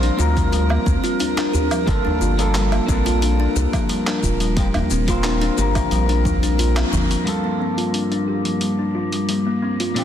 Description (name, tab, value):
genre	organic downtempo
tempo	89 BPM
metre	4/4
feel	straight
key	G minor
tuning	A4 = 443 Hz
part	electric guitar at the edge of break-up	accompaniment	0.0-10.0 s	G2 to C5	-24 LUFS	left 1 dB	spring reverb, sidechain pumping, ping-pong delay
part	buzzing kalimba	arpeggios	0.0-10.0 s	F3 to G4	-23 LUFS	left 2 dB	low-pass filter, ping-pong delay
part	round analog bass	bass	0.0-7.2 s	Eb1 to D2	-20 LUFS	equal	tube saturation, sidechain pumping
part	dusty soul sampler-style drum kit	drums	0.0-10.0 s	handclaps, hi-hat, shaker, woodblock	-28 LUFS	equal	none
part	drifting glass-harmonics texture	texture	0.0-10.0 s	Bb3 to Bb4	-29 LUFS	right 3 dB	chorus, built-in reverb
part	djembe	percussion	0.2-7.1 s	none	-28 LUFS	equal	none
part	electronic kick drum	drums	0.4-6.4 s	none	-23 LUFS	equal	none
room	light reverb, digital ambience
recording	dense, heavily limited modern master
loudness	-17 LUFS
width	side -10 dB against mid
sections	0.0-7.3 A section; 7.3-10.0 B section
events	band accent 6.8-7.1; filter sweep on kalimba 7.3-10.0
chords	0.0 Bb6; 1.9 Gm9; 4.6 Eb6; 7.3 Gm9